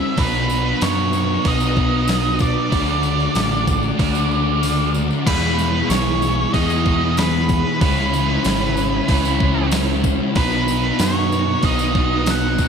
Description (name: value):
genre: rock, shoegaze and dream pop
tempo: 94 BPM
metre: 4/4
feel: straight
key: unclear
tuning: A4 = 440 Hz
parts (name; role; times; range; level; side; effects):
- octave-fuzz lead guitar; melody; 0.0-12.7 s; B4 to F#5; -23 LUFS; right 2 dB; distortion, digital delay
- string machine, cellos; sustained chords; 0.0-12.7 s; D#4 to E6; -28 LUFS; equal; ensemble chorus
- biting overdriven guitar; riff; 0.0-12.7 s; B2 to E4; -23 LUFS; right 12 dB; reverse reverb
- thick fuzz guitar; riff; 0.0-12.7 s; E2 to D4; -23 LUFS; left 12 dB; distortion, lush chorus
- growling picked electric bass; bass; 0.2-12.7 s; G#1 to F#2; -22 LUFS; equal; overdrive
- crisp 8-bit digital drum machine; drums; 0.2-12.7 s; crash cymbal, hi-hat, kick drum, snare drum; -22 LUFS; equal; overdrive
- tambourine; percussion; 0.3-12.7 s; none; -35 LUFS; left 13 dB; none
room: moderate studio reverb, RT60 0.6 s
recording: none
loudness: -16 LUFS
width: side -6 dB against mid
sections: 0.0-5.3 A section; 5.3-12.7 A section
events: kick and snare drop out 4.6-5.3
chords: 0.2 Bmaj7; 2.7 D; 5.3 E6; 7.8 C#m7; 10.4 Bmaj7